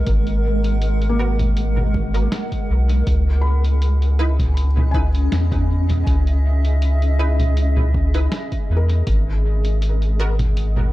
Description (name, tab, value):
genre	ambient dub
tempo	80 BPM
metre	4/4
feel	swing 54% on 16ths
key	unclear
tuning	A4 = 445 Hz
part	granular cloud pad	sustained chords	0.0-10.9 s	G#3 to F#5	-27 LUFS	right 1 dB	built-in reverb
part	felt-muted upright piano	arpeggios	0.0-10.9 s	A#3 to B5	-32 LUFS	left 3 dB	tape echo
part	soft dub sub bass	bass	0.0-10.9 s	G#1 to E2	-17 LUFS	equal	tube saturation
part	electronic kick drum	drums	0.1-10.5 s	none	-24 LUFS	equal	small room ambience
part	lo-fi sampler-style drum kit	drums	0.1-10.9 s	congas, hi-hat, snare drum	-28 LUFS	right 1 dB	small room ambience, dub echo
part	filtered dub chord stab	stabs	1.2-10.4 s	B3 to B4	-31 LUFS	right 2 dB	ensemble chorus, dub echo
room	digital ambience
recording	dark, warm production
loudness	-16 LUFS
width	side -16 dB against mid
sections	0.0-10.9 A section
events	none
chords	0.0 G#m9; 3.1 C#m9; 9.1 G#7sus2